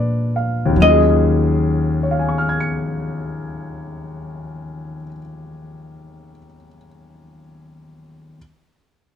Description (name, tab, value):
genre	jazz ballad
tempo	47 BPM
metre	4/4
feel	swing 69% on 8ths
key	Eb minor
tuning	A4 = 440 Hz
part	archtop guitar, miked and amplified	melody	0.0-5.1 s	Bb4 to Eb5	-16 LUFS	equal	none
part	warm grand piano	accompaniment	0.0-8.4 s	Eb2 to Db7	-20 LUFS	left 3 dB	none
part	upright bass	bass	0.0-5.0 s	Eb2 to Bb2	-22 LUFS	equal	none
room	light reverb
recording	dark, warm production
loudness	-15 LUFS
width	side -8 dB against mid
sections	0.8-5.9 A section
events	none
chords	0.0 Bb7b9; 0.8 Ebm11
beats	| 0.78 2.05 3.32 4.59